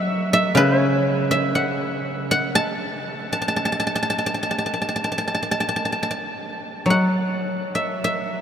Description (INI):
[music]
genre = chinese traditional, Chinese solo plucked strings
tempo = 51-62 BPM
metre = 4/4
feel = rubato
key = unclear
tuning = A4 = 441 Hz
[part]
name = guzheng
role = solo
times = 0.0-8.4 s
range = C#3 to A5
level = -20 LUFS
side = equal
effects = none
[sound]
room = wet huge ambient reverb, RT60 8.5 s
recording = in a vast, echoing space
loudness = -19 LUFS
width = side -8 dB against mid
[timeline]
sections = 0.0-6.9 A section; 6.9-8.4 B section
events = none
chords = none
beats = 0.56 1.56 | 2.56 3.58 4.64 5.74 | 6.88 8.03